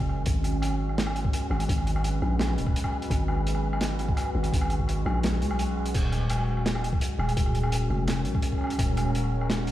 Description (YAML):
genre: half-time drum and bass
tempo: 169 BPM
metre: 4/4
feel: half-time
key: unclear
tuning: A4 = 440 Hz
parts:
  - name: deep dark ambient pad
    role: sustained chords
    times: 0.0-9.7 s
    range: Ab3 to Cb5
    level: -33 LUFS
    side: right 1 dB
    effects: chorus, built-in reverb, vintage 12-bit sampler grit, sidechain pumping
  - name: growling 808-style bass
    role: bass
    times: 0.0-9.7 s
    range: Eb1 to Db2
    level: -27 LUFS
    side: equal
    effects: none
  - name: electronic kick drum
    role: drums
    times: 0.0-8.9 s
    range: none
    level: -27 LUFS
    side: equal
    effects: none
  - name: crunchy breakbeat drum kit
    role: drums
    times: 0.1-9.7 s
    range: crash cymbal, hi-hat, snare drum, woodblock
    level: -31 LUFS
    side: equal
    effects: none
room: small room ambience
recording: played on a big sound system in a bare room, large studio reverb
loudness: -24 LUFS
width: side -13 dB against mid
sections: 0.0-9.7 A section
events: kick drops out 5.2-5.9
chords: 0.3 Abm; 5.9 Ebm